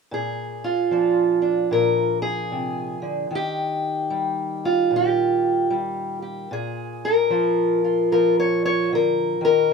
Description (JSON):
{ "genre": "acoustic country blues, solo or duo", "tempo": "75 BPM", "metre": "4/4", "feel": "swing 63% on 8ths", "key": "Bb mixolydian", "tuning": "A4 = 440 Hz", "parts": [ { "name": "fingerpicked steel-string acoustic guitar", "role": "solo", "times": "0.1-9.7 s", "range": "Bb2 to Db5", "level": "-19 LUFS", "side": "equal", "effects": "none" } ], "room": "moderate studio ambience, RT60 0.5 s", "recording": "minimal, uncompressed stereo recording", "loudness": "-19 LUFS", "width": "side -5 dB against mid", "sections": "0.1-9.7 A section", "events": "none", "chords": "0.1 Bb7; 3.3 Eb; 6.5 Bb7", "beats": "| 0.12 0.92 1.72 2.52 | 3.32 4.12 4.92 5.72 | 6.52 7.32 8.12 8.92 | 9.72" }